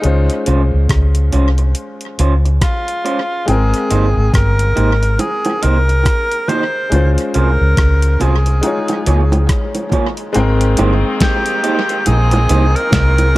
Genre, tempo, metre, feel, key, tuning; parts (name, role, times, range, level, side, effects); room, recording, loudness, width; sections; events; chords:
lovers rock reggae; 70 BPM; 4/4; swing 60% on 16ths; Ab major; A4 = 443 Hz
breathy tenor saxophone; melody; 0.0-13.4 s; Eb4 to C5; -19 LUFS; equal; tape echo
clear baby grand piano; accompaniment; 0.0-13.4 s; Ab3 to G5; -22 LUFS; left 3 dB
vintage muted fingered electric bass; bass; 0.0-13.4 s; G1 to Db2; -13 LUFS; equal
detuned 8-bit digital drum machine; drums; 0.0-13.3 s; hi-hat, kick drum, rim click, snare drum; -18 LUFS; equal; tape echo
electric guitar through a small old amp; stabs; 0.5-13.4 s; Ab3 to Db5; -22 LUFS; right 3 dB; tremolo
bongos; percussion; 3.5-13.4 s; -24 LUFS; right 2 dB; tape echo
clear horn section; second line; 10.4-13.3 s; Eb3 to Eb4; -23 LUFS; equal; tape echo
little or no reverb; -12 LUFS; side -18 dB against mid
0.0-10.4 A section; 10.4-13.4 B section
0.0 Dbmaj7; 3.5 Abmaj9; 6.9 Dbmaj7; 8.6 Eb9sus4; 10.4 Abmaj9